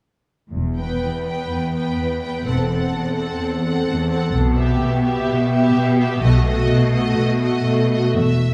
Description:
quick classical-period movement for string orchestra; 126 BPM; 4/4; rubato; E minor; A4 = 440 Hz
warm symphonic cello section; bass; 0.5-8.5 s; E2 to B2; -22 LUFS; equal
warm symphonic double bass section; bass; 0.5-8.5 s; E1 to B1; -25 LUFS; equal
warm symphonic violin section; melody; 0.8-8.5 s; D#5 to G5; -31 LUFS; equal
dark symphonic violin section; second line; 0.8-8.2 s; F#4 to B4; -28 LUFS; equal
warm studio viola section; accompaniment; 0.8-8.2 s; A3 to C4; -26 LUFS; equal
wet scoring stage reverb, RT60 1.7 s; heard from further back in the room; -19 LUFS; mono
0.5-8.2 A section
0.5 Em; 2.5 F#m7b5/E; 4.3 Em/B; 6.2 B7

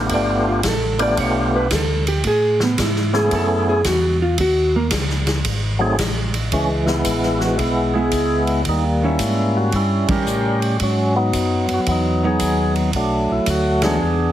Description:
soul jazz organ trio; 112 BPM; 4/4; swing 67% on 8ths; C# minor; A4 = 444 Hz
percussive tonewheel organ; melody; 0.0-14.3 s; E3 to A#4; -19 LUFS; equal; slow rotary speaker, plate reverb
mellow tonewheel organ; bass; 0.0-14.3 s; G1 to A2; -22 LUFS; equal; chorus vibrato, slow rotary speaker
hollow-body jazz guitar; accompaniment; 0.1-14.0 s; D#3 to D5; -21 LUFS; right 2 dB
swinging big-band drum kit; drums; 0.1-13.9 s; hi-hat, kick drum, ride cymbal, snare drum; -24 LUFS; equal
moderate studio reverb, RT60 0.6 s; heavily compressed radio sound, multiband compression; -16 LUFS; side -12 dB against mid
0.0-6.5 A section; 6.5-14.3 B section
hollow-body jazz guitar solo 0.0-6.5; band accent 10.0, 13.7
0.1 G9; 2.2 Amaj9; 4.4 F#5; 5.5 G#7b9; 6.5 C#m7; 8.7 D#7b9; 10.8 G#m7; 12.9 Bm7

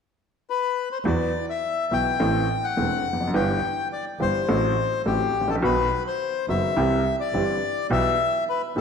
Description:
tango; 105 BPM; 4/4; rubato; E minor; A4 = 442 Hz
bandoneon; melody; 0.5-8.8 s; G4 to G5; -24 LUFS; left 6 dB
warm double bass; bass; 1.0-8.8 s; E1 to E2; -29 LUFS; right 4 dB
clear upright piano; accompaniment; 1.1-8.8 s; E1 to A4; -25 LUFS; right 1 dB
wet echo chamber reverb, RT60 2.0 s; -21 LUFS; side -6 dB against mid
0.0-1.0 A section; 1.0-8.8 B section
0.0 N.C.; 1.0 Esus2; 2.2 Am; 3.3 Em7/G; 4.5 F#dim/A; 5.6 B; 6.8 C; 7.9 Em/B

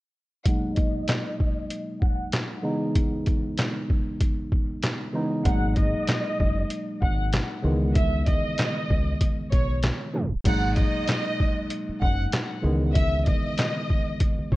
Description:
hip hop, boom-bap hip-hop; 96 BPM; 4/4; swing 59% on 16ths; G# minor; A4 = 438 Hz
warm studio violin section; melody; 0.5-14.6 s; C#5 to F#5; -31 LUFS; equal; high-pass filter, low-pass filter, ping-pong delay
tine electric piano; accompaniment; 0.5-14.6 s; B2 to D#4; -29 LUFS; equal; overdrive, cassette tape, high-pass filter, low-pass filter
trip hop sampler-style drum kit; drums; 0.5-14.6 s; crash cymbal, handclaps, hi-hat, kick drum, snare drum; -24 LUFS; equal
deep dub fingered electric bass; bass; 5.5-14.6 s; F#1 to C#2; -26 LUFS; equal; tube saturation
digital ambience; worn, warbling old tape, cassette tape, warbly pitch drift, tape stop; -22 LUFS; side -18 dB against mid
0.5-10.5 A section; 10.5-14.6 B section
filter sweep 0.5-10.5; tape stop 10.1-10.5
0.5 G#m7; 2.6 C#m7; 5.5 G#m7; 7.6 C#m7; 10.5 G#m7; 12.6 C#m7

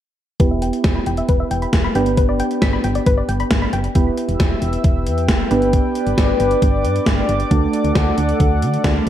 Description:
synth-pop; 135 BPM; 4/4; straight; E minor; A4 = 440 Hz
soft electric-piano-like synth keys; accompaniment; 0.4-9.1 s; A3 to B4; -21 LUFS; right 3 dB; chorus, low-pass filter
soft round pluck; arpeggios; 0.4-3.8 s; B4 to B6; -24 LUFS; left 4 dB; chorus, low-pass filter, analog delay
solid FM bass; bass; 0.4-9.1 s; E1 to D3; -21 LUFS; equal
gated 80s digital drum machine; drums; 0.4-9.1 s; hi-hat, kick drum, snare drum; -18 LUFS; equal; gated reverb, gated reverb snare
warm analog pad; sustained chords; 4.0-9.1 s; A4 to E6; -21 LUFS; left 3 dB; chorus
moderate lush hall reverb, RT60 1.7 s, digital ambience; -15 LUFS; side -11 dB against mid
0.4-4.0 A section; 4.0-9.1 B section
filter sweep 0.4-4.0
0.4 Em; 2.0 G; 4.0 Em; 5.5 G; 7.5 D

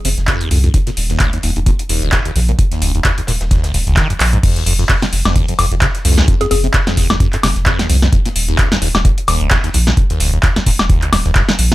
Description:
acid house; 130 BPM; 4/4; swing 56% on 16ths; A4 = 441 Hz
liquid acid bass; riff; 0.0-11.7 s; Db2 to Eb3; -19 LUFS; equal; phaser, overdrive, ping-pong delay
warm sub bass; bass; 0.0-11.7 s; Eb1 to C2; -16 LUFS; equal; sidechain pumping
deep reggae drum kit; drums; 0.0-11.7 s; hi-hat, shaker, snare drum; -36 LUFS; left 2 dB
electro analog drum machine; drums; 0.0-11.7 s; crash cymbal, handclaps, hi-hat, snare drum, woodblock; -17 LUFS; equal
electronic kick drum; drums; 0.3-11.5 s; -14 LUFS; equal; overdrive
mallet-like synth pluck; melody; 6.4-6.6 s; Ab4; -22 LUFS; left 4 dB; chorus, phaser, dub echo
little or no reverb; -12 LUFS; side -17 dB against mid
0.0-4.4 A section; 4.4-11.7 B section
drum fill 4.2; drop 4.4-11.7
0.0 F5; 0.7 Eb7(no3); 4.4 F5; 8.1 Eb5

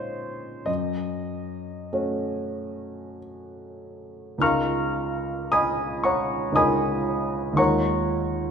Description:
classical, impressionist solo piano; 46-59 BPM; 3/4; rubato; Db mixolydian; A4 = 436 Hz
warm concert grand piano; solo; 0.0-8.5 s; Db2 to F6; -24 LUFS; equal
moderate scoring stage reverb, RT60 2.0 s; minimal, uncompressed stereo recording; -22 LUFS; side -6 dB against mid
0.0-4.4 A section; 4.4-8.5 A section
0.0 Bbm11; 0.7 Gbm6; 4.4 Db69; 7.6 Ebm11

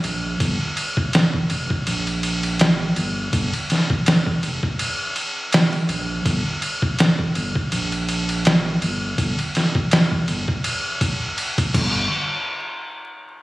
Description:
trip hop; 82 BPM; 4/4; swing 55% on 16ths; G minor; A4 = 440 Hz
soft dub sub bass; bass; 0.0-12.1 s; F1 to Bb1; -24 LUFS; right 1 dB; tube saturation
trip hop sampler-style drum kit; drums; 0.0-11.9 s; crash cymbal, kick drum, ride cymbal, snare drum; -20 LUFS; equal
little or no reverb; recorded on a phone in the room, studio reverb, vinyl crackle; -18 LUFS; side -18 dB against mid
0.0-12.1 A section; 12.1-13.4 B section

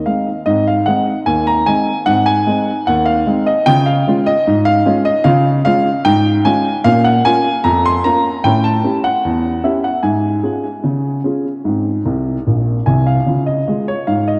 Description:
ragtime piano; 75 BPM; 2/4; straight; Ab major, Db major from 6.8 s; A4 = 440 Hz
dark baby grand piano; solo; 0.0-14.4 s; Bb1 to C6; -15 LUFS; equal; tape echo
wet plate reverb, RT60 3.2 s; dreamy mix soaked in reverb; -15 LUFS; mono
0.5-13.3 A section; 13.3-14.4 B section
grand piano fill 12.1-13.3
0.5 Ab; 3.7 Db; 6.8 Bbm; 8.4 A7; 10.0 Db/Ab; 11.7 Ab; 13.3 Db

